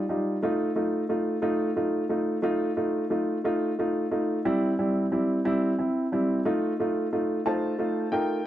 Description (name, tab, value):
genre	pop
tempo	60 BPM (dotted quarters)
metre	6/8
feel	straight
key	unclear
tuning	A4 = 440 Hz
part	warm grand piano	solo	0.0-8.4 s	G3 to A5	-24 LUFS	equal	slapback echo
room	light reverb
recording	dry, close 1970s-style studio recording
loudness	-24 LUFS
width	side -12 dB against mid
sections	0.0-8.5 A section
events	none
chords	0.4 F7; 4.5 C; 6.5 F7